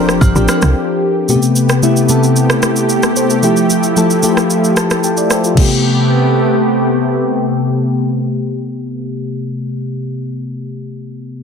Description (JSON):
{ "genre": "amapiano", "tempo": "112 BPM", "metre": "4/4", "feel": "straight", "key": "A minor", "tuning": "A4 = 440 Hz", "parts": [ { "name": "soft struck synth lead", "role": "melody", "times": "0.0-0.8 s", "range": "C5", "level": "-30 LUFS", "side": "left 1 dB", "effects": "none" }, { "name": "mellow FM electric piano", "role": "accompaniment", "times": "0.0-11.4 s", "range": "B2 to A5", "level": "-14 LUFS", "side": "left 2 dB", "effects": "chorus, low-pass filter" }, { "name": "lush unison pad", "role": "sustained chords", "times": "0.0-9.0 s", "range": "C3 to G4", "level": "-17 LUFS", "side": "right 1 dB", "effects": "chorus, sidechain pumping, low-pass filter" }, { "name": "tight log drum bass", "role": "bass", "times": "0.0-0.7 s", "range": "F1 to C2", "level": "-14 LUFS", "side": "right 1 dB", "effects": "none" }, { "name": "smooth R&B drum kit", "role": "drums", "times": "0.1-5.7 s", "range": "crash cymbal, kick drum, rim click, shaker", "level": "-17 LUFS", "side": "right 1 dB", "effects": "overdrive" }, { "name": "agogo bells", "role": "percussion", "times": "0.2-0.6 s", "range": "none", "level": "-26 LUFS", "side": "right 1 dB", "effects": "none" } ], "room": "light reverb", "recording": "dense, heavily limited modern master", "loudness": "-11 LUFS", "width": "side -6 dB against mid", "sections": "0.0-1.3 A section; 1.3-5.6 B section; 5.6-9.9 C section", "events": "break 0.8-1.3; FM electric piano fill 4.5-5.6", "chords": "0.0 G7sus4; 1.3 Am9; 3.4 Fmaj9; 5.6 Am9" }